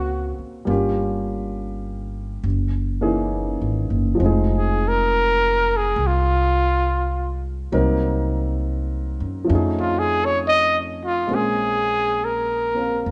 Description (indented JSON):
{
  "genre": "jazz ballad",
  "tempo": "68 BPM",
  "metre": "4/4",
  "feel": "swing 66% on 8ths",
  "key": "Bb minor",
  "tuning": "A4 = 444 Hz",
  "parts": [
    { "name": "breathy trumpet", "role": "melody", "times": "0.0-13.1 s", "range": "F4 to Eb5", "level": "-22 LUFS", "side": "equal", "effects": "none" },
    { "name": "warm grand piano", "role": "accompaniment", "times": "0.0-13.1 s", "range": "Fb3 to F5", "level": "-27 LUFS", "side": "equal", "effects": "none" },
    { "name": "upright bass", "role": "bass", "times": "0.0-13.1 s", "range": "F1 to Gb2", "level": "-26 LUFS", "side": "equal", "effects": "none" }
  ],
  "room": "moderate recital hall reverb, RT60 1.6 s",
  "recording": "recorded in a church or concert hall, nothing above 10.3 kHz, faint mains hum",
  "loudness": "-21 LUFS",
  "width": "mono",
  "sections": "0.0-11.3 A section; 11.3-13.1 B section",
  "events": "trumpet solo 0.0-11.3",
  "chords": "0.0 Gbmaj9; 0.7 Gm7b5; 2.4 Gb13; 4.2 Fm7; 7.7 Cm7b5; 9.5 F7alt; 11.3 Bbm9"
}